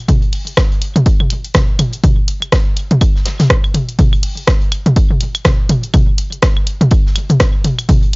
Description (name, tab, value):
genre	techno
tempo	123 BPM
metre	4/4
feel	swing 58% on 16ths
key	none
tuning	none
part	big rock drum kit	drums	0.1-8.2 s	hi-hat, snare drum	-32 LUFS	left 2 dB	sidechain pumping on hats, high-pass filter on hats, high-pass filter on snare, high-pass filter on room
part	electronic kick drum	drums	0.1-8.0 s	none	-13 LUFS	equal	none
part	punchy analog drum machine	drums	0.1-8.2 s	hi-hat, rim click	-17 LUFS	equal	none
part	electronic toms and claves	percussion	0.1-8.0 s	none	-15 LUFS	equal	none
room	little or no reverb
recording	dry, gritty hardware recording, cassette tape, nothing above 7.6 kHz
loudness	-11 LUFS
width	side -29 dB against mid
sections	0.0-8.2 A section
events	none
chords	none